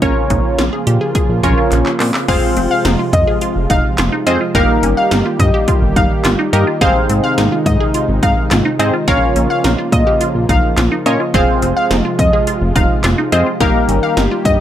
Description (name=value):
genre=synth-pop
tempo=106 BPM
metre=4/4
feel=straight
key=F minor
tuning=A4 = 441 Hz
part: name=funky polysynth comp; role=accompaniment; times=0.0-14.2 s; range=Bb3 to Db5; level=-17 LUFS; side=equal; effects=chorus, plate reverb
part: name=warm analog pad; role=sustained chords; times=0.0-14.6 s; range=C3 to G4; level=-20 LUFS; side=right 1 dB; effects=chorus, plate reverb
part: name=resonant blip pluck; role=arpeggios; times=0.0-14.5 s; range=C4 to Bb4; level=-22 LUFS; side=right 1 dB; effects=phaser, tape echo, plate reverb
part: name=chorused synth bass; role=bass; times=0.0-14.6 s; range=F1 to Bb2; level=-17 LUFS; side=equal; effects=none
part: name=80s electronic pad drums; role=drums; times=0.0-14.6 s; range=crash cymbal, handclaps, hi-hat, kick drum, snare drum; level=-17 LUFS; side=equal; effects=none
part: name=analog pluck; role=second line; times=2.3-14.6 s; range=Eb5 to F5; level=-18 LUFS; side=left 2 dB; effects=chorus, tape echo, plate reverb
room=light reverb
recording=none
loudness=-12 LUFS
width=side -11 dB against mid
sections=0.0-2.3 A section; 2.3-14.6 B section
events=drum fill 1.7-2.3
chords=0.0 Bbm; 2.3 Fm; 4.5 Eb/G; 6.8 Ab; 9.1 Bbm; 11.3 Fm; 13.6 Eb/G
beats=| 0.02 0.59 1.15 1.72 | 2.28 2.85 3.42 3.98 | 4.55 5.12 5.68 6.25 | 6.81 7.38 7.95 8.51 | 9.08 9.64 10.21 10.78 | 11.34 11.91 12.47 13.04 | 13.61 14.17